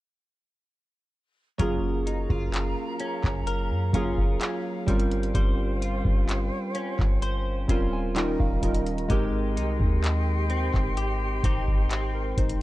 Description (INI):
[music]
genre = contemporary R&B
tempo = 64 BPM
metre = 4/4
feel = straight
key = unclear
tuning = A4 = 439 Hz
[part]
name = warm analog keys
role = accompaniment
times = 1.6-12.6 s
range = Gb3 to C6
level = -30 LUFS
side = right 2 dB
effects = chorus
[part]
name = small flute group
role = sustained chords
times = 1.6-12.6 s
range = G4 to C6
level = -36 LUFS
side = equal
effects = none
[part]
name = direct-recorded clean electric guitar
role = arpeggios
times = 1.6-12.6 s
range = Eb3 to C5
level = -34 LUFS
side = left 2 dB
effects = analog chorus, analog delay
[part]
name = clean 808-style bass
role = bass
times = 1.6-12.6 s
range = Eb1 to Gb2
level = -27 LUFS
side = equal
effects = none
[part]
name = booming analog drum machine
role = drums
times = 1.6-12.6 s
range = handclaps, hi-hat, kick drum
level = -27 LUFS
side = equal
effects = none
[sound]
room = little or no reverb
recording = dry, gritty hardware recording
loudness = -23 LUFS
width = side -16 dB against mid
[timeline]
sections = 1.6-12.6 A section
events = synth keys fill 7.2-9.1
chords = 1.6 Gbmaj7; 4.9 Eb13/G; 8.2 Eb7; 9.1 Abmaj7